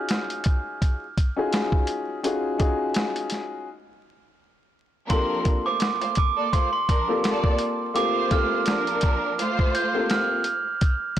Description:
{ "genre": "hip hop, boom-bap hip-hop", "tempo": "84 BPM", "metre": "4/4", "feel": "swing 55% on 16ths", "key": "G minor", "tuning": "A4 = 440 Hz", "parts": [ { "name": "dark upright piano", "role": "accompaniment", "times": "0.0-10.4 s", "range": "Bb3 to A4", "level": "-27 LUFS", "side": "left 3 dB", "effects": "high-pass filter, low-pass filter" }, { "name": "boom bap sampler-style drum kit", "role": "drums", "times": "0.1-11.2 s", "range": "hi-hat, kick drum, snare drum", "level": "-23 LUFS", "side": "equal", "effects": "none" }, { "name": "glockenspiel with soft plastic mallets", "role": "melody", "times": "5.1-10.4 s", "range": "C6 to G6", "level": "-26 LUFS", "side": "right 5 dB", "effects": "high-pass filter, low-pass filter" }, { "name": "warm studio string section", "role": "stabs", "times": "5.1-10.3 s", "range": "F3 to D5", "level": "-28 LUFS", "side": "equal", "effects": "high-pass filter, low-pass filter, digital delay" } ], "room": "light reverb, small room ambience", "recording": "blown-out, overdriven recording, vinyl crackle, overdrive", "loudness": "-21 LUFS", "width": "side -11 dB against mid", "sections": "0.0-11.2 A section", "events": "break 3.7-5.1", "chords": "0.0 Ebm11; 5.1 Gm11", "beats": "0.10 0.82 1.53 | 2.24 2.96 3.67 4.39 | 5.10 5.82 6.53 7.24 | 7.96 8.67 9.39 10.10 | 10.82" }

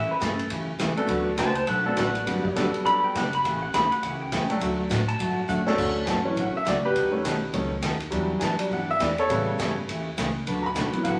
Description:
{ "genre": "country, western swing", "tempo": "205 BPM", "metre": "4/4", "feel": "swing 60% on 8ths", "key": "D major", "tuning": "A4 = 437 Hz", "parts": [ { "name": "pedal steel guitar", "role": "second line", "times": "0.0-5.8 s", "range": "A4 to B5", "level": "-28 LUFS", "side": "equal", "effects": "none" }, { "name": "picked steel-string acoustic guitar", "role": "accompaniment", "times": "0.0-11.2 s", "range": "C#3 to B4", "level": "-32 LUFS", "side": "equal", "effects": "none" }, { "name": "upright bass", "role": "bass", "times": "0.0-11.2 s", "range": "F#1 to A2", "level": "-38 LUFS", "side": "equal", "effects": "none" }, { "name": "swinging big-band drum kit", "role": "drums", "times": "0.2-11.1 s", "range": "crash cymbal, hi-hat, kick drum, ride cymbal, snare drum", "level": "-34 LUFS", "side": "equal", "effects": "none" }, { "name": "clear upright piano", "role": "accompaniment", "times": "1.0-11.2 s", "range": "C#3 to B5", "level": "-28 LUFS", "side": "equal", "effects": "none" } ], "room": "wet large studio reverb, RT60 1.1 s", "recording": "vinyl crackle, lossy compression artefacts", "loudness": "-25 LUFS", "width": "mono", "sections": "0.0-5.8 A section; 5.8-11.2 A section", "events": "pedal steel guitar solo 0.0-5.8; drum fill 5.5; upright piano solo 5.8-11.2", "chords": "0.0 A7; 1.1 D6; 2.3 Gmaj7; 3.4 A7; 4.6 D; 5.8 Dmaj7; 7.0 B7; 8.1 Em7; 9.3 A7; 10.5 D6", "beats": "0.22 0.51 0.80 | 1.09 1.39 1.68 1.97 | 2.27 2.56 2.85 3.15 | 3.44 3.73 4.02 4.32 | 4.61 4.90 5.20 5.49 | 5.78 6.08 6.37 6.66 | 6.95 7.25 7.54 7.83 | 8.13 8.42 8.71 9.00 | 9.30 9.59 9.88 10.17 | 10.46 10.76 11.05" }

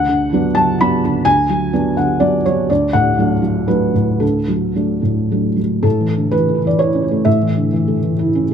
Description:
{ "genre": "neoclassical minimalist piano", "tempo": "107-132 BPM", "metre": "3/4", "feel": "rubato", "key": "A major", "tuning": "A4 = 437 Hz", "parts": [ { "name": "felt-muted upright piano", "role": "solo", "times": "0.0-8.5 s", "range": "D2 to B5", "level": "-14 LUFS", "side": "equal", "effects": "tape echo" } ], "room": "light reverb", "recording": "close, detailed microphones, faint mains hum", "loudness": "-14 LUFS", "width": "side -8 dB against mid", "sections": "0.0-5.8 A section; 5.8-8.5 B section", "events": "none", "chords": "0.0 Bm/D; 2.7 D; 5.8 A", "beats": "0.31 0.78 | 1.25 1.73 2.21 | 2.70 3.18 3.68 | 4.22 4.77 5.32 | 5.85 6.34 6.80 | 7.26 7.73 8.19" }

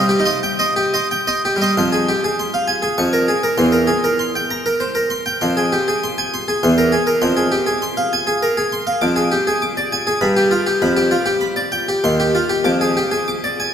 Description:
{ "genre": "classical, baroque-style suite movement for harpsichord", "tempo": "99 BPM", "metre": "3/4", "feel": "rubato", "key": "F minor", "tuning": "A4 = 440 Hz", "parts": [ { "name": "harpsichord", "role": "solo", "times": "0.0-13.7 s", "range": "Eb2 to D6", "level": "-15 LUFS", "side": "equal", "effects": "none" } ], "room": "wet church reverb, RT60 3.5 s", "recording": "none", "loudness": "-15 LUFS", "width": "side -8 dB against mid", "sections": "0.0-1.8 A section; 1.8-13.7 A section", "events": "none", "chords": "0.0 Cm; 1.8 Fm; 3.0 Bbm/F; 3.6 C7/E; 5.4 Fm; 6.6 C7/E; 7.2 Fm; 9.0 Ddim/F; 10.2 G; 10.8 G7/F; 12.0 Cm/Eb; 12.7 Ddim/F", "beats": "0.42 1.10 | 1.78 2.39 2.98 | 3.58 4.20 4.80 | 5.42 6.03 6.63 | 7.22 7.82 8.42 | 9.02 9.62 10.22 | 10.82 11.43 12.05 | 12.66 13.28" }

